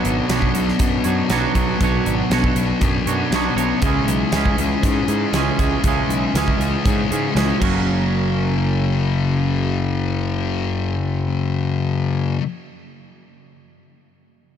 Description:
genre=rock, shoegaze and dream pop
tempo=119 BPM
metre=4/4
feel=straight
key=F# mixolydian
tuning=A4 = 440 Hz
part: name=twelve-string electric guitar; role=arpeggios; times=0.0-12.4 s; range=F#3 to A#4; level=-30 LUFS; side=right 6 dB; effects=analog chorus, slapback echo
part: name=thick fuzz guitar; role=riff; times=0.0-12.4 s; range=F#2 to C#4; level=-22 LUFS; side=left 7 dB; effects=distortion, analog chorus
part: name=twangy electric guitar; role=riff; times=0.0-12.4 s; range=B2 to C#5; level=-24 LUFS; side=right 10 dB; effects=reverse reverb
part: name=fuzz picked electric bass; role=bass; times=0.0-12.4 s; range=F#1 to G#2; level=-23 LUFS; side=right 1 dB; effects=overdrive
part: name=gated 80s drum kit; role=drums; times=0.0-7.7 s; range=crash cymbal, hi-hat, kick drum, snare drum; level=-22 LUFS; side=right 1 dB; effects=none
room=light reverb, studio ambience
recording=none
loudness=-17 LUFS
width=side -9 dB against mid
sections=0.0-7.9 A section; 7.9-11.9 B section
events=none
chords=0.0 Bmadd9; 3.8 C#m; 7.6 F#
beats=0.29 0.79 1.30 | 1.80 2.30 2.81 3.31 | 3.82 4.32 4.83 5.33 | 5.84 6.34 6.85 7.36 | 7.86 8.37 8.87 9.38 | 9.88 10.39 10.89 11.40

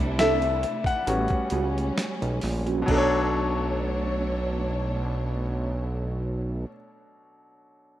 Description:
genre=R&B, neo-soul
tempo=64-70 BPM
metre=4/4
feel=swing 54% on 16ths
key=B minor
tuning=A4 = 440 Hz
part: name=clear concert grand piano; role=accompaniment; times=0.0-8.0 s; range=B2 to F#5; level=-28 LUFS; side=left 3 dB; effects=none
part: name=warm studio string section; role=sustained chords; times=0.0-6.6 s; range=B2 to C#5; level=-33 LUFS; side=right 1 dB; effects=none
part: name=fat analog bass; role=bass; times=0.0-6.7 s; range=A1 to C#2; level=-28 LUFS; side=right 1 dB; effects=none
part: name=nylon-string guitar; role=second line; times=0.2-6.7 s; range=G3 to C#5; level=-29 LUFS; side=right 6 dB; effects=none
part: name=boom bap sampler-style drum kit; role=drums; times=0.2-3.1 s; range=crash cymbal, hi-hat, kick drum, snare drum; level=-30 LUFS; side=right 1 dB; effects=none
room=light reverb, studio reverb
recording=rough home demo mix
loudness=-24 LUFS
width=side -13 dB against mid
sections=0.0-2.9 A section; 2.9-6.6 B section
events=slowing down 0.0-2.9; grand piano solo 0.0-2.9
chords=0.0 C69; 1.1 A13; 2.9 Bm9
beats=0.18 1.06 1.95 | 2.88 3.82 4.76 5.70

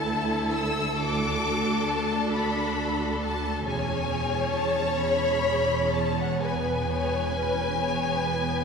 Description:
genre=classical, slow romantic movement for string orchestra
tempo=44 BPM (dotted quarters)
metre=12/8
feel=rubato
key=unclear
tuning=A4 = 440 Hz
part: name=warm symphonic violin section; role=melody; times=0.0-8.6 s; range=F#5 to E6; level=-30 LUFS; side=left 4 dB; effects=none
part: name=warm symphonic violin section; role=second line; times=0.0-8.6 s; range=A4 to C#5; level=-29 LUFS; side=left 2 dB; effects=none
part: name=warm symphonic viola section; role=accompaniment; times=0.0-8.6 s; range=B3 to B4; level=-32 LUFS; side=right 1 dB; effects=none
part: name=warm symphonic cello section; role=bass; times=0.0-8.6 s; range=D2 to E2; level=-31 LUFS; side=right 3 dB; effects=none
part: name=warm symphonic double bass section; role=bass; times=0.0-8.6 s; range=E1 to D2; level=-33 LUFS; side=right 2 dB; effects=none
room=wet church reverb, RT60 2.8 s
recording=none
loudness=-24 LUFS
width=side -5 dB against mid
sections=0.0-8.6 A section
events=none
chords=0.0 D; 3.7 E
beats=0.99 2.34 | 3.66 5.01 6.41 7.79

